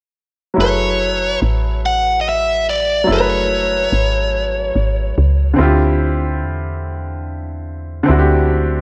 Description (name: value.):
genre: R&B.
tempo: 48 BPM (dotted quarters).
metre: 6/8.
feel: straight.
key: unclear.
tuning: A4 = 440 Hz.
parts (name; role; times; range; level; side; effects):
clear baby grand piano; accompaniment; 0.5-8.8 s; D3 to B4; -21 LUFS; equal; none.
biting lead guitar; melody; 0.6-5.1 s; C#5 to F#5; -20 LUFS; equal; overdrive, tape echo.
woody FM bass; bass; 0.6-8.8 s; F#1 to E2; -21 LUFS; equal; none.
room: moderate echo chamber reverb, RT60 1.8 s.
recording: none.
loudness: -16 LUFS.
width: mono.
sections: 0.6-8.8 A section.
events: none.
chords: 0.6 F#m11; 5.6 Dm11.